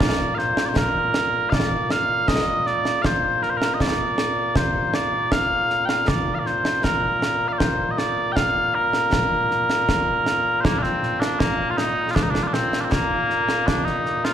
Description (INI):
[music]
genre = scottish traditional, Scottish pipe music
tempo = 79 BPM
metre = 2/4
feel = straight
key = Bb major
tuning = A4 = 441 Hz
[part]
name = mellow small bagpipes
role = melody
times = 0.0-14.3 s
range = Bb2 to G5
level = -20 LUFS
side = equal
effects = slapback echo
[part]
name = concert snare drum and concert bass drum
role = drums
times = 0.0-14.3 s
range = none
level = -24 LUFS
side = equal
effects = none
[sound]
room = moderate plate reverb, RT60 2.5 s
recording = live gig heard through the venue's PA, recital hall reverb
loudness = -19 LUFS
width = side -9 dB against mid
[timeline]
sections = 0.0-10.6 A section; 10.6-14.3 B section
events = none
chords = none